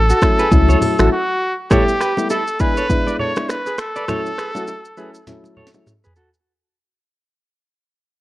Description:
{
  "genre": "afrobeats",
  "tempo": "101 BPM",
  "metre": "4/4",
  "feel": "swing 58% on 16ths",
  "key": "A major",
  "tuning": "A4 = 440 Hz",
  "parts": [
    { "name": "clear trumpet", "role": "melody", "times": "0.0-5.9 s", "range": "F#4 to C#5", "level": "-20 LUFS", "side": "equal", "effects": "none" },
    { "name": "warm sub bass", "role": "bass", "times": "0.0-1.1 s", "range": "A1 to C#2", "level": "-14 LUFS", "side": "equal", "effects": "none" },
    { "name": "clean electric guitar", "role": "riff", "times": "0.1-6.3 s", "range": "E4 to D5", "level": "-24 LUFS", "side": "right 2 dB", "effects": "none" },
    { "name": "afro-pop drum kit", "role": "drums", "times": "0.1-6.5 s", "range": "finger snaps, hi-hat, kick drum, rim click, shaker, snare drum, toms", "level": "-19 LUFS", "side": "equal", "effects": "none" },
    { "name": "soft electric-piano-like synth keys", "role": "accompaniment", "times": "0.2-5.9 s", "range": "F#3 to E4", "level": "-21 LUFS", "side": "left 2 dB", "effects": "chorus" },
    { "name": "congas and bongos", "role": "percussion", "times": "0.5-6.0 s", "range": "none", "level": "-26 LUFS", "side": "right 1 dB", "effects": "none" }
  ],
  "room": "light reverb",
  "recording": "worn, warbling old tape, cassette tape, warbly pitch drift",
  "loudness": "-15 LUFS",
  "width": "side -16 dB against mid",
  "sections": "0.0-1.7 A section; 1.7-6.5 B section",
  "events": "break 1.1-1.7; fade-out 1.7-6.5; drum fill 5.3-6.5",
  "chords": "0.0 A6; 1.7 G69; 2.6 E7; 4.1 A6",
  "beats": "0.52 1.11 | 1.71 2.30 2.89 3.49 | 4.08 4.68 5.27 5.87"
}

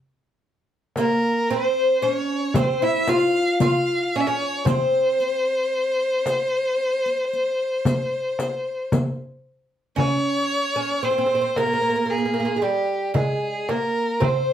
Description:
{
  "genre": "Arabic maqam ensemble",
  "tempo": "113 BPM (eighths)",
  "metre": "10/8",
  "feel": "straight",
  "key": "C maqam hijaz",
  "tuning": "A4 = 440 Hz",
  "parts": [
    { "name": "rich violin", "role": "melody", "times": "1.0-14.5 s", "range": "G4 to F5", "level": "-22 LUFS", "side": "left 1 dB", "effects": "none" },
    { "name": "oud", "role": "second line", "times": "1.0-14.5 s", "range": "G3 to F4", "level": "-23 LUFS", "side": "right 2 dB", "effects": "none" },
    { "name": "frame drum", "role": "percussion", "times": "1.0-14.5 s", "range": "none", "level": "-24 LUFS", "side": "left 1 dB", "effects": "none" },
    { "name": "riq", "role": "percussion", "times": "1.0-9.2 s", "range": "none", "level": "-28 LUFS", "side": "left 1 dB", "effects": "none" }
  ],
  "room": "wet studio reverb, RT60 0.5 s",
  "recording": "heard from further back in the room",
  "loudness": "-20 LUFS",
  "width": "side -10 dB against mid",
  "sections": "0.0-10.0 A section; 10.0-14.5 B section",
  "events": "none",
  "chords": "none",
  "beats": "0.43 0.96 1.49 2.02 2.55 3.08 3.61 4.14 | 4.67 5.20 5.73 6.26 6.79 7.32 7.86 8.38 8.92 9.45 | 9.98 10.51 11.04 11.57 12.10 12.63 13.16 13.69 14.22"
}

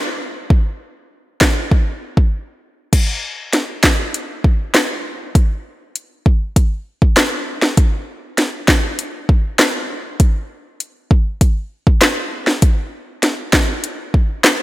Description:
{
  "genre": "dancehall",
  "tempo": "99 BPM",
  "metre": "4/4",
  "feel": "straight",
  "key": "none",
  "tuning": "none",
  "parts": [
    { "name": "afro-pop drum kit", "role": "drums", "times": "0.5-14.6 s", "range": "crash cymbal, handclaps, hi-hat, kick drum, rim click, snare drum", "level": "-14 LUFS", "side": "equal", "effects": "none" }
  ],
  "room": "light reverb, digital ambience",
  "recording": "none",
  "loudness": "-14 LUFS",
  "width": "side -17 dB against mid",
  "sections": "0.0-2.9 A section; 2.9-14.6 B section",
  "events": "break 2.3-2.9",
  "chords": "none",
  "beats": "| 0.50 1.11 1.72 2.32 | 2.93 3.53 4.14 4.75 | 5.35 5.96 6.56 7.17 | 7.78 8.38 8.99 9.59 | 10.20 10.81 11.41 12.02 | 12.62 13.23 13.84 14.44"
}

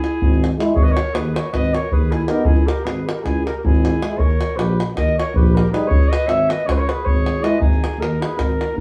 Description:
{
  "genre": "balkan folk, Balkan brass band",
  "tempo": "315 BPM (eighths)",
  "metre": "9/8",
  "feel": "straight",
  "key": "G# harmonic minor",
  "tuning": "A4 = 440 Hz",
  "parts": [
    { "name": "mellow flugelhorn", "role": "melody", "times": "0.0-8.8 s", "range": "G#4 to E5", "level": "-26 LUFS", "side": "equal", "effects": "none" },
    { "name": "clear clarinet", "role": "second line", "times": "0.0-8.8 s", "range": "D#4 to C#5", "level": "-29 LUFS", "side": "equal", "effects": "none" },
    { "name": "mellow tuba", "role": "bass", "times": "0.0-8.8 s", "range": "G#1 to D#2", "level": "-24 LUFS", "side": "equal", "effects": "none" },
    { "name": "davul", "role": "percussion", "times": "0.0-8.8 s", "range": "none", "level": "-21 LUFS", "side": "equal", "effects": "none" },
    { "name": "clear euphonium", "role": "accompaniment", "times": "0.6-7.6 s", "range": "G3 to B3", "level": "-28 LUFS", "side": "equal", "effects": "none" },
    { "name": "mellow trombone", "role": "accompaniment", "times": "0.6-7.6 s", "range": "D#4 to E4", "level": "-24 LUFS", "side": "equal", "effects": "none" }
  ],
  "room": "wet studio reverb, RT60 0.6 s",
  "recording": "band playing live in one room, small room ambience",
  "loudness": "-18 LUFS",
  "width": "mono",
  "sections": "0.0-8.8 A section",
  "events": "none",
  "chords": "0.0 C#m (rootless); 0.7 G#m; 2.5 C#m; 4.2 D#; 5.9 C#5; 7.6 G#5",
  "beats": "0.17 0.36 0.55 | 0.74 0.93 1.12 1.31 1.51 1.70 1.89 2.08 2.27 | 2.46 2.65 2.84 3.03 3.22 3.41 3.60 3.79 3.98 | 4.17 4.36 4.55 4.74 4.93 5.12 5.31 5.50 5.69 | 5.88 6.07 6.26 6.45 6.64 6.83 7.02 7.21 7.40 | 7.59 7.78 7.97 8.15 8.34 8.53 8.72"
}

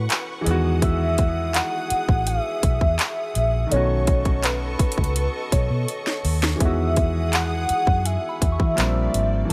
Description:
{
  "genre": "contemporary R&B",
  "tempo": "83 BPM",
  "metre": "4/4",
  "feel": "straight",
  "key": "E major",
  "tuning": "A4 = 440 Hz",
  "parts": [
    { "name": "warm velvety synth lead", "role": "melody", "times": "0.0-9.5 s", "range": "B4 to F#5", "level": "-28 LUFS", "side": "equal", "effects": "chorus, digital delay" },
    { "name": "warm grand piano", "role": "accompaniment", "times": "0.0-9.5 s", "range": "D#3 to F#4", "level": "-31 LUFS", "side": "equal", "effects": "none" },
    { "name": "clear studio string section", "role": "sustained chords", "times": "0.0-9.5 s", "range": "B#3 to D#6", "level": "-36 LUFS", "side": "equal", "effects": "none" },
    { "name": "vintage muted fingered electric bass", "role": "bass", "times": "0.0-9.5 s", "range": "G#1 to E3", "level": "-26 LUFS", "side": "equal", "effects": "none" },
    { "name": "trap drum kit", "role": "drums", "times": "0.1-9.5 s", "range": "handclaps, hi-hat, kick drum, snare drum", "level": "-24 LUFS", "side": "equal", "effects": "none" },
    { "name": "soft synth bell", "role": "texture", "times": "3.7-9.5 s", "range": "C#5 to C#6", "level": "-38 LUFS", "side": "equal", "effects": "chorus, phaser, digital delay" }
  ],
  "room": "digital ambience",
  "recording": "none",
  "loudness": "-22 LUFS",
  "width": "mono",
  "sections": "0.0-9.5 A section",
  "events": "drum fill 5.9-6.6",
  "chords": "0.5 Emaj9; 3.7 B9; 6.6 Emaj9; 8.8 A#69",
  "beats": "0.10 | 0.82 1.54 2.27 2.99 | 3.71 4.44 5.16 5.88 | 6.61 7.33 8.05 8.77 | 9.50"
}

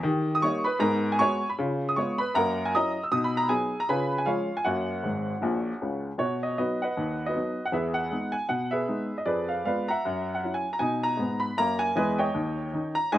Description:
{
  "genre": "jazz, stride piano",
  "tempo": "156 BPM",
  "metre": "4/4",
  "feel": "swing 58% on 8ths",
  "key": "B major",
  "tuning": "A4 = 440 Hz",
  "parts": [
    { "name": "clear upright piano", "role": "solo", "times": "0.0-13.2 s", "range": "G#1 to E6", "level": "-25 LUFS", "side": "equal", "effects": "none" }
  ],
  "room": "light reverb",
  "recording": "recorded outdoors, with no room sound",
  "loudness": "-25 LUFS",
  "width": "side -13 dB against mid",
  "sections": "0.0-6.2 A section; 6.2-13.2 B section",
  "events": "upright piano fill 5.0-6.2",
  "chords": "0.0 D#7; 0.8 G#m7; 1.6 C#7; 2.3 F#7; 3.1 B; 3.9 C#7; 4.7 F#; 6.2 B; 7.0 B/D#; 7.7 Emaj7; 9.3 Fdim7; 10.0 F#5; 10.8 B; 12.3 D#7",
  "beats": "| 0.04 0.43 0.81 1.20 | 1.58 1.96 2.35 2.73 | 3.12 3.50 3.88 4.27 | 4.65 5.04 5.42 5.80 | 6.19 6.57 6.96 7.34 | 7.73 8.11 8.50 8.88 | 9.27 9.65 10.04 10.42 | 10.81 11.19 11.58 11.96 | 12.35 12.73 13.12"
}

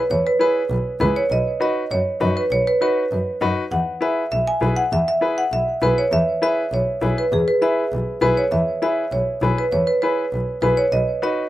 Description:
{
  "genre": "latin, cumbia",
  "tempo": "200 BPM",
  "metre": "4/4",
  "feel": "straight",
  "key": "E major",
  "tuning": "A4 = 440 Hz",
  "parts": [
    { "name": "marimba with medium hard mallets", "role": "melody", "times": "0.0-11.5 s", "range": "G#4 to G#5", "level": "-20 LUFS", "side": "right 1 dB", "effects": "none" },
    { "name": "warm double bass", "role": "bass", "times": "0.1-11.0 s", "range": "B1 to F#2", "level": "-23 LUFS", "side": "equal", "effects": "none" },
    { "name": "bright upright piano", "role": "accompaniment", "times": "0.4-11.4 s", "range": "D#4 to B4", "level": "-24 LUFS", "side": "left 4 dB", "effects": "slapback echo" }
  ],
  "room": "little or no reverb",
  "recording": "recorded outdoors, with no room sound",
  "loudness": "-17 LUFS",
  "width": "side -14 dB against mid",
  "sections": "0.0-8.5 A section; 8.5-11.5 A section",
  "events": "none",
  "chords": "0.0 E; 1.3 B; 3.7 E; 10.9 B",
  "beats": "| 0.10 0.41 0.71 1.01 | 1.31 1.61 1.91 2.21 | 2.52 2.82 3.12 3.42 | 3.72 4.02 4.32 4.62 | 4.92 5.22 5.52 5.82 | 6.12 6.42 6.72 7.02 | 7.32 7.62 7.92 8.22 | 8.52 8.82 9.12 9.42 | 9.72 10.02 10.32 10.62 | 10.92 11.22"
}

